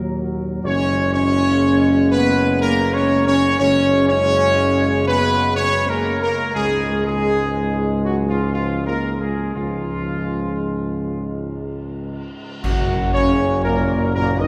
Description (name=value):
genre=classical, ceremonial fanfare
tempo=60 BPM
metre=3/4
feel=straight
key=unclear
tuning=A4 = 440 Hz
part: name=mellow trombone section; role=sustained chords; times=0.0-14.5 s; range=Gb2 to G#3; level=-28 LUFS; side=equal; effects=none
part: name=mellow tuba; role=bass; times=0.0-14.5 s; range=F#1 to D#2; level=-25 LUFS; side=equal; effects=none
part: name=dark trumpet section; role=melody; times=0.7-14.5 s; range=E#4 to Eb5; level=-23 LUFS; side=equal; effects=none
part: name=mellow French horn section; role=sustained chords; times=0.7-14.5 s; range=E#3 to Eb4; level=-24 LUFS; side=equal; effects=none
part: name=cymbal swell, clash cymbals and concert bass drum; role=percussion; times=9.6-14.5 s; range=none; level=-29 LUFS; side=equal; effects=none
room=wet cathedral reverb, RT60 4.2 s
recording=recorded in a church or concert hall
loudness=-19 LUFS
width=mono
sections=0.0-12.6 A section; 12.6-14.5 B section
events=band accent 12.6-13.6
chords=0.0 D#m; 0.6 F#sus2; 6.5 C#; 12.6 Gb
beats=| 0.64 1.62 2.61 | 3.60 4.58 5.56 | 6.55 7.55 8.54 | 9.55 10.58 11.61 | 12.64 13.64